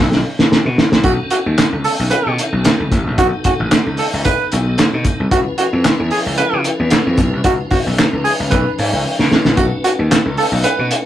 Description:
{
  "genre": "funk",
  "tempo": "112 BPM",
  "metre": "4/4",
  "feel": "straight",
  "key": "unclear",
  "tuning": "A4 = 440 Hz",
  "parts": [
    { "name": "breathy tenor saxophone", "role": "second line", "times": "0.0-10.9 s", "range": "F#4 to B4", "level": "-17 LUFS", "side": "right 1 dB", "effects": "none" },
    { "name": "gritty slap bass", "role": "bass", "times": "0.0-10.9 s", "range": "A1 to C#3", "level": "-19 LUFS", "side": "left 1 dB", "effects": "overdrive" },
    { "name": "cloth-damped thuddy drum kit", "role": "drums", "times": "0.1-11.0 s", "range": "handclaps, hi-hat, kick drum, snare drum", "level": "-15 LUFS", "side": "equal", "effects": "none" },
    { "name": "tonewheel organ", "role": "sustained chords", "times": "1.0-11.1 s", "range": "D#3 to B4", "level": "-25 LUFS", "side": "left 1 dB", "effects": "slow rotary speaker, overdrive, chorus vibrato" }
  ],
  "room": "moderate studio ambience, RT60 0.5 s",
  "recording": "rough rehearsal-room recording",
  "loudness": "-13 LUFS",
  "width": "side -12 dB against mid",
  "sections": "0.0-1.0 A section; 1.0-11.1 B section",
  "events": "drum fill 0.0-1.0, 9.0-9.6",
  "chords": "0.0 N.C.; 1.0 B9; 5.3 C#7#9; 9.6 B9"
}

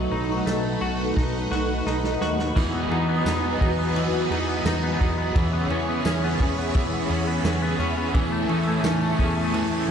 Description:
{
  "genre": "dream pop",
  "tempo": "86 BPM",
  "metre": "4/4",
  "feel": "straight",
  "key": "unclear",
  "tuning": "A4 = 440 Hz",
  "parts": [
    { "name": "string machine, full ensemble", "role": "sustained chords", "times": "0.0-9.9 s", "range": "A3 to C#6", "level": "-28 LUFS", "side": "equal", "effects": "phaser, ensemble chorus" },
    { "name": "semi-hollow electric guitar", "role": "arpeggios", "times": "0.0-9.9 s", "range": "E3 to F#4", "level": "-26 LUFS", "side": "left 2 dB", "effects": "analog chorus, ping-pong delay" },
    { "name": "fat analog bass", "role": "bass", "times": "0.0-9.9 s", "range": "B1 to E2", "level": "-28 LUFS", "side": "equal", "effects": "none" },
    { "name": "synth chime", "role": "texture", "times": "0.3-9.9 s", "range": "B5 to G#6", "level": "-40 LUFS", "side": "left 2 dB", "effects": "none" },
    { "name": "vintage drum kit", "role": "drums", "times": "0.5-9.7 s", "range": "crash cymbal, hi-hat, kick drum, ride cymbal, snare drum, tambourine", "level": "-26 LUFS", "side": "right 1 dB", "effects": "none" },
    { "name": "crunchy overdriven guitar", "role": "accompaniment", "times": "2.6-9.9 s", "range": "C#3 to B4", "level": "-29 LUFS", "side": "right 4 dB", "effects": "tremolo, analog chorus" }
  ],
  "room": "moderate plate reverb, RT60 1.8 s, studio ambience",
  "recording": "played on a big sound system in a bare room, stone room reverb",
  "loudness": "-21 LUFS",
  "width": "side -8 dB against mid",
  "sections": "0.0-2.6 A section; 2.6-9.9 B section",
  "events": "drum fill 1.2-2.6",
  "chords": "0.0 B7; 2.6 G#m7/E; 5.4 C#m7/E; 8.1 Amaj7/E"
}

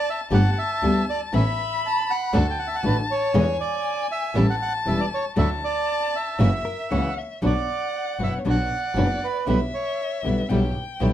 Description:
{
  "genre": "tango",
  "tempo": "118 BPM",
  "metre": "4/4",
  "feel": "rubato",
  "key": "D major, B minor from 7.4 s",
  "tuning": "A4 = 440 Hz",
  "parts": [
    { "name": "bandoneon", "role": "melody", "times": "0.0-10.2 s", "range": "B4 to A5", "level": "-27 LUFS", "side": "right 3 dB", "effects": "none" },
    { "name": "dark violin", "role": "second line", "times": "0.0-11.1 s", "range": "C#5 to B5", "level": "-29 LUFS", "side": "left 4 dB", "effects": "none" },
    { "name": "flamenco guitar", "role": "accompaniment", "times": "0.3-11.1 s", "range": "B2 to G4", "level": "-25 LUFS", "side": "left 2 dB", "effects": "none" },
    { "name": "warm studio string section", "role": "stabs", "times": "0.3-11.1 s", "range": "A3 to A4", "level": "-31 LUFS", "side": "right 3 dB", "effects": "none" },
    { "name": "clear double bass", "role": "bass", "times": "0.3-11.1 s", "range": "E1 to E2", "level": "-23 LUFS", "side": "equal", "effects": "none" },
    { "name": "hollow-body jazz guitar", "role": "second line", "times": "6.7-7.4 s", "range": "A#4 to C#5", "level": "-34 LUFS", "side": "left 4 dB", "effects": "none" }
  ],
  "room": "moderate club ambience, RT60 0.5 s",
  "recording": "vinyl crackle",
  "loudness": "-21 LUFS",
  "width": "side -11 dB against mid",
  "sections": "0.0-7.4 A section; 7.4-11.1 B section",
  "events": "none",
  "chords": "0.3 Gadd9; 1.3 Aadd9; 2.3 D; 3.3 E7; 4.4 A7; 5.4 Dadd9; 6.4 F#7; 7.4 Bm; 9.5 G6/B"
}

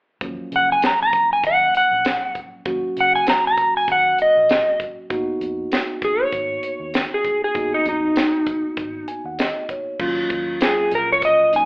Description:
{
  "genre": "straight-eighth soul blues",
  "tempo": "98 BPM",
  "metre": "4/4",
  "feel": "swing 55% on 16ths",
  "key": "Eb minor",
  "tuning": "A4 = 440 Hz",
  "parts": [
    { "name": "tine electric piano", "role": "accompaniment", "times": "0.2-11.7 s", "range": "F3 to Ab5", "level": "-27 LUFS", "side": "equal", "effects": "none" },
    { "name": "vintage muted fingered electric bass", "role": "bass", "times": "0.2-11.7 s", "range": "Ab1 to Db3", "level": "-41 LUFS", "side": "equal", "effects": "none" },
    { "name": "tight funk drum kit", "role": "drums", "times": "0.2-11.7 s", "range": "crash cymbal, hi-hat, kick drum, snare drum, tambourine", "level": "-23 LUFS", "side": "equal", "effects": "none" },
    { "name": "electric slide guitar", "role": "melody", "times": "0.6-11.7 s", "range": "Eb4 to Bb5", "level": "-16 LUFS", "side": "equal", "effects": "none" }
  ],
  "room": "moderate large studio reverb, RT60 0.8 s",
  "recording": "band playing live in one room, telephone sound",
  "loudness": "-17 LUFS",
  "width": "side -30 dB against mid",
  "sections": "0.2-10.0 A section; 10.0-11.7 B section",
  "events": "tine electric piano fill 8.8-10.0",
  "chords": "0.2 Ebm7; 5.1 Abm7; 10.0 Ebm7"
}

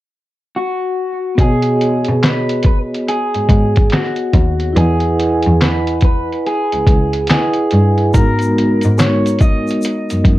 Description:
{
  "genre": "lo-fi hip hop",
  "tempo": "71 BPM",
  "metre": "4/4",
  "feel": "swing 66% on 16ths",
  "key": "B major",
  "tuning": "A4 = 440 Hz",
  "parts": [
    { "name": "electric guitar through a small old amp", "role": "melody", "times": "0.6-10.4 s", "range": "F#4 to D#5", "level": "-19 LUFS", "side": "equal", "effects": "harmonic tremolo, low-pass filter, tape echo, plate reverb" },
    { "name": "vibraphone with medium mallets", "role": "accompaniment", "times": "1.4-10.4 s", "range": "G#3 to G#5", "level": "-18 LUFS", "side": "right 1 dB", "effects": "cassette tape, low-pass filter, plate reverb" },
    { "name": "rich cello", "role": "bass", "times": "1.4-10.4 s", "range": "C#2 to B2", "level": "-16 LUFS", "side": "equal", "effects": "none" },
    { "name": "lo-fi sampler-style drum kit", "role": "drums", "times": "1.4-10.4 s", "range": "handclaps, hi-hat, kick drum, snare drum", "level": "-14 LUFS", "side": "equal", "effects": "overdrive" },
    { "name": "tube shaker", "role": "percussion", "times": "8.1-10.2 s", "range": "none", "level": "-36 LUFS", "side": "left 4 dB", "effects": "none" }
  ],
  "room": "light reverb",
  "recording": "cassette tape",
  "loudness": "-12 LUFS",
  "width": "side -16 dB against mid",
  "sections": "0.0-1.4 A section; 1.4-10.4 B section",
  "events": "none",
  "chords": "0.0 N.C.; 1.4 B6; 4.8 Emaj7; 8.1 G#m9"
}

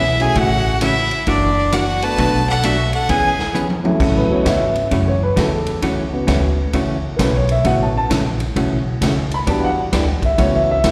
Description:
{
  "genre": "country, western swing",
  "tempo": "132 BPM",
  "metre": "4/4",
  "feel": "swing 65% on 8ths",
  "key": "A major",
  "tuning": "A4 = 440 Hz",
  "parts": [
    { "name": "clear fiddle", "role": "melody", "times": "0.0-3.6 s", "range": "D5 to A5", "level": "-21 LUFS", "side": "equal", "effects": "slapback echo" },
    { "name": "clear fiddle", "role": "second line", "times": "0.0-3.5 s", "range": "D4 to B4", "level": "-26 LUFS", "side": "equal", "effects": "slapback echo" },
    { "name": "vintage hollow-body jazz guitar", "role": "accompaniment", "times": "0.0-10.9 s", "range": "B2 to G#4", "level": "-23 LUFS", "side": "equal", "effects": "slapback echo" },
    { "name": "upright bass", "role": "bass", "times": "0.0-10.9 s", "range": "F#1 to A2", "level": "-23 LUFS", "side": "equal", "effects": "none" },
    { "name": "dark upright piano", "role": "accompaniment", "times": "0.2-10.9 s", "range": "F#3 to B5", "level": "-22 LUFS", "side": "equal", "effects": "slapback echo" },
    { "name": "swinging big-band drum kit", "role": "drums", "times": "0.2-10.9 s", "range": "crash cymbal, hi-hat, kick drum, ride cymbal, snare drum, toms", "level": "-27 LUFS", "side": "equal", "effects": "none" }
  ],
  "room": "light reverb",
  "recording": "live gig heard through the venue's PA, recital hall reverb",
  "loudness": "-17 LUFS",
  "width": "mono",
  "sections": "0.0-4.0 A section; 4.0-10.9 B section",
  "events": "drum fill 3.5-4.0; upright piano solo 4.0-10.9",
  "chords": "0.4 A6; 1.3 F#7alt; 2.2 Bm7; 3.1 E6; 4.0 A6; 9.5 Em7; 10.4 A6"
}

